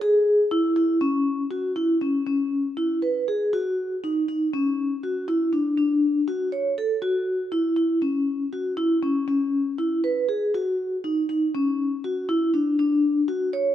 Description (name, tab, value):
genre	contemporary instrumental, contemporary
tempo	240 BPM (eighths)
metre	7/8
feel	straight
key	unclear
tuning	A4 = 440 Hz
part	vibraphone with soft mallets	solo	0.0-13.7 s	C#4 to C#5	-21 LUFS	equal	none
room	moderate recital hall reverb, RT60 1.5 s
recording	none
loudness	-21 LUFS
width	side -11 dB against mid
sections	0.0-3.5 A section; 3.5-13.7 B section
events	none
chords	none